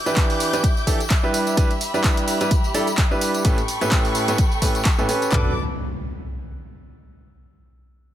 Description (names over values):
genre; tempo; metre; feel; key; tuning
piano house; 128 BPM; 4/4; swing 56% on 16ths; B minor; A4 = 437 Hz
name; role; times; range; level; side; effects
dark studio violin section; sustained chords; 0.0-5.5 s; G4 to G6; -27 LUFS; equal; sidechain pumping, low-pass filter
clear baby grand piano; riff; 0.1-5.5 s; A2 to B4; -23 LUFS; right 1 dB; sidechain pumping, low-pass filter, ping-pong delay
punchy analog drum machine; drums; 0.1-5.3 s; handclaps, hi-hat, tambourine; -26 LUFS; right 1 dB; overdrive
tambourine; percussion; 0.1-5.3 s; none; -36 LUFS; left 5 dB; none
house drum kit; drums; 0.2-5.4 s; handclaps, kick drum, toms; -20 LUFS; equal; overdrive
solid FM bass; bass; 5.3-5.5 s; B1; -28 LUFS; equal; sidechain pumping
impact; sound effects; 5.4-7.2 s; none; -30 LUFS; left 1 dB; none
room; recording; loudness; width
little or no reverb; none; -18 LUFS; side -12 dB against mid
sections
0.0-5.3 A section; 5.3-7.2 B section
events
none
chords
0.0 Em7; 1.3 G6; 3.4 A9; 5.3 Bm7